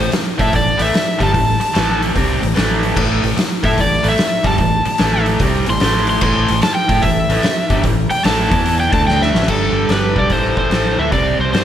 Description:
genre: blues rock power trio and southern rock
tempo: 147 BPM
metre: 4/4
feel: swing 66% on 8ths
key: A minor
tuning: A4 = 440 Hz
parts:
  - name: overdriven slide guitar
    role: melody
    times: 0.0-11.6 s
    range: A4 to C6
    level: -18 LUFS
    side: equal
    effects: none
  - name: biting overdriven guitar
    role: riff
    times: 0.0-11.6 s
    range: G2 to A4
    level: -18 LUFS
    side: equal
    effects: spring reverb
  - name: vintage muted fingered electric bass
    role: bass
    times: 0.0-11.6 s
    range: G1 to A2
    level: -21 LUFS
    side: equal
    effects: none
  - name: oversized low-tuned drum kit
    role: drums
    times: 0.1-11.6 s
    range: crash cymbal, hi-hat, kick drum, snare drum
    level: -18 LUFS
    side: equal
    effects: none
room: light reverb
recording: none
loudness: -13 LUFS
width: side -10 dB against mid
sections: 0.0-9.5 A section; 9.5-11.6 B section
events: electric slide guitar solo 0.0-9.5; drum fill 9.1-9.5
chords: 0.0 Am; 8.5 E5; 8.9 D5; 9.3 A5; 9.5 G; 10.3 Am; 11.1 C5

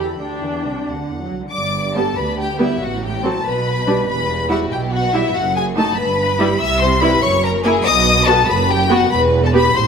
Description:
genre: quick classical-period movement for string orchestra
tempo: 95 BPM (dotted quarters)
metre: 6/8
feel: rubato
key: G major, E minor from 6.6 s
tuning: A4 = 438 Hz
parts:
  - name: rich chamber violin section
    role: melody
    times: 0.0-9.9 s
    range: E5 to E6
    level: -19 LUFS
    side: left 5 dB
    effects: none
  - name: warm studio violin section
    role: second line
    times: 0.0-9.9 s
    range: D4 to E5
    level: -22 LUFS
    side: left 2 dB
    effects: none
  - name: warm studio viola section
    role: accompaniment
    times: 0.0-9.6 s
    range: F#3 to G4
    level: -20 LUFS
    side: right 2 dB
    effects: none
  - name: rich studio double bass section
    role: bass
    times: 0.0-9.9 s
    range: E1 to E2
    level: -23 LUFS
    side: right 3 dB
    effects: none
  - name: warm chamber cello section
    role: bass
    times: 0.0-9.9 s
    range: D2 to F#3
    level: -24 LUFS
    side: right 4 dB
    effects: none
room: moderate scoring stage reverb, RT60 1.8 s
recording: none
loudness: -14 LUFS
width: side -6 dB against mid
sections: 0.0-1.5 A section; 1.5-9.9 B section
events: none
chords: 0.2 G5/D; 0.9 D; 1.5 G; 2.8 F#dim/A; 3.5 G/B; 4.1 Em; 5.4 D#dim/F#; 6.0 Em/G; 6.6 C; 7.2 F#7; 7.9 B; 9.1 Em

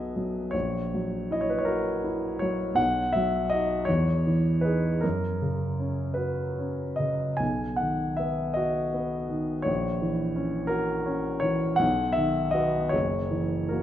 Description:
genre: classical, romantic nocturne for solo piano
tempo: 48-59 BPM (dotted quarters)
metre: 12/8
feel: rubato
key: B major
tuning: A4 = 439 Hz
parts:
  - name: warm grand piano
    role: solo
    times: 0.0-13.8 s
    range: F#1 to G#5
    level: -24 LUFS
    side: equal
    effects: none
room: wet recital hall reverb, RT60 1.7 s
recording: nothing above 10.9 kHz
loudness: -24 LUFS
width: side -11 dB against mid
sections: 0.0-13.8 A section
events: none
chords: 0.0 B; 0.5 F#7/A#; 2.8 B; 3.9 Emaj7; 5.0 F#; 7.4 B; 9.7 F#7/A#; 11.8 B; 12.9 F#7

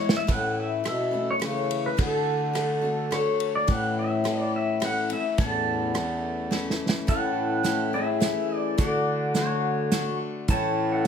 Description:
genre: honky-tonk and classic country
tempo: 106 BPM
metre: 3/4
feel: straight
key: A major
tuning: A4 = 439 Hz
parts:
  - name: pedal steel guitar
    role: melody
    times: 0.0-11.1 s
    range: F#4 to A5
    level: -28 LUFS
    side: left 1 dB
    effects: none
  - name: picked steel-string acoustic guitar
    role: accompaniment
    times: 0.0-11.1 s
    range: A2 to F#4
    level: -29 LUFS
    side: left 4 dB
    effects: none
  - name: clear bass clarinet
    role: bass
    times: 0.0-11.1 s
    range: E2 to D3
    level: -29 LUFS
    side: right 1 dB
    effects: none
  - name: unplugged drum kit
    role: drums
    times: 0.1-11.1 s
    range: hi-hat, kick drum, ride cymbal, rim click, snare drum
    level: -27 LUFS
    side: right 2 dB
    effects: none
room: moderate studio reverb, RT60 0.8 s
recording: none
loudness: -23 LUFS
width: side -7 dB against mid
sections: 0.3-7.1 A section; 7.1-11.1 B section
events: drum fill 0.0, 6.5-7.1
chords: 0.3 A; 2.0 D; 3.7 A; 8.8 D; 10.5 A

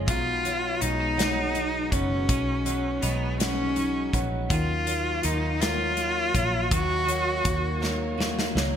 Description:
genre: six-eight pop ballad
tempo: 54 BPM (dotted quarters)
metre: 6/8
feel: straight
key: unclear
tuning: A4 = 440 Hz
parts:
  - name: fingerpicked steel-string acoustic guitar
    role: accompaniment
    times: 0.0-8.8 s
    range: B2 to E#4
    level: -32 LUFS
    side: equal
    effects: double-tracked left and right
  - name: twelve-string electric guitar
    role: arpeggios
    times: 0.0-8.8 s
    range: F#3 to E#4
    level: -36 LUFS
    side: right 8 dB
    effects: analog chorus
  - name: vintage muted fingered electric bass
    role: bass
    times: 0.0-8.8 s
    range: F#1 to D#2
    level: -30 LUFS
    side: equal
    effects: none
  - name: clear cello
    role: melody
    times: 0.1-8.2 s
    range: B3 to F#4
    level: -27 LUFS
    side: left 1 dB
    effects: none
  - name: modern studio drum kit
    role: drums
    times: 0.1-8.7 s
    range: hi-hat, kick drum, snare drum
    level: -28 LUFS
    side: left 1 dB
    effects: gated reverb
room: moderate plate reverb, RT60 2.9 s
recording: bright 1980s-style digital production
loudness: -23 LUFS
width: side -8 dB against mid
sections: 0.0-8.8 A section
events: drum fill 7.8-8.8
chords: 0.1 G#m7; 4.5 D#madd9

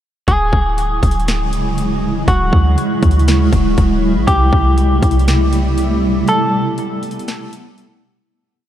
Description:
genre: hip hop, atmospheric cloud-rap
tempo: 120 BPM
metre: 4/4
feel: half-time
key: unclear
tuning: A4 = 440 Hz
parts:
  - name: semi-hollow electric guitar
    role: melody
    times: 0.3-7.2 s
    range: F#4 to A4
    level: -20 LUFS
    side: equal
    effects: tape echo
  - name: granular cloud pad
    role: sustained chords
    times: 0.9-8.3 s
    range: C3 to E4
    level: -18 LUFS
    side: right 1 dB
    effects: built-in reverb, sidechain pumping
  - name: clean 808-style bass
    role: bass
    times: 0.3-6.2 s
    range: D1 to D2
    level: -15 LUFS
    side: equal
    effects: none
  - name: trap drum kit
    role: drums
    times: 0.3-7.9 s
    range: hi-hat, kick drum, snare drum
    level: -19 LUFS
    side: equal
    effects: overdrive
room: moderate huge ambient reverb, RT60 7.8 s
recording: dreamy mix soaked in reverb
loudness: -12 LUFS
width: side -11 dB against mid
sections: 0.3-8.3 verse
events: break 6.3-8.3; fade-out 6.3-8.3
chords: 0.3 Dmaj9#11; 4.3 C6

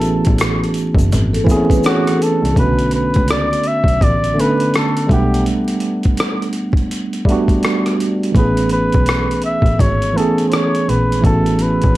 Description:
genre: lo-fi hip hop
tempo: 83 BPM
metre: 4/4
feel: swing 59% on 16ths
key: A major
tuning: A4 = 442 Hz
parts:
  - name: breathy flugelhorn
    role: melody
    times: 0.0-12.0 s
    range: F#4 to E5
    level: -20 LUFS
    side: equal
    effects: tape echo, plate reverb
  - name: tine electric piano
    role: accompaniment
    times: 0.0-12.0 s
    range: D3 to F#5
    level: -17 LUFS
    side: right 2 dB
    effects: medium stereo tremolo, cassette tape
  - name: clear double bass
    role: bass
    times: 0.0-12.0 s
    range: F#1 to C#2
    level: -19 LUFS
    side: equal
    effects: none
  - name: boom bap sampler-style drum kit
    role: drums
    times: 0.0-12.0 s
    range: hi-hat, kick drum, rim click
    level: -18 LUFS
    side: equal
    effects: none
  - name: egg shaker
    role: percussion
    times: 0.0-2.4 s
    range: none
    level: -37 LUFS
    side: left 8 dB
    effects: none
  - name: vibraphone with soft mallets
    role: second line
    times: 1.3-2.5 s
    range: A4 to C#5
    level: -23 LUFS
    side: left 5 dB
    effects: tape echo, plate reverb
room: moderate studio reverb, RT60 0.5 s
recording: vinyl crackle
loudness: -13 LUFS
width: side -16 dB against mid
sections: 0.0-2.6 A section; 2.6-12.0 B section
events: break 5.5-8.3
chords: 0.0 Amaj9; 2.6 Bm7; 5.1 Gmaj7/B; 8.3 Amaj9

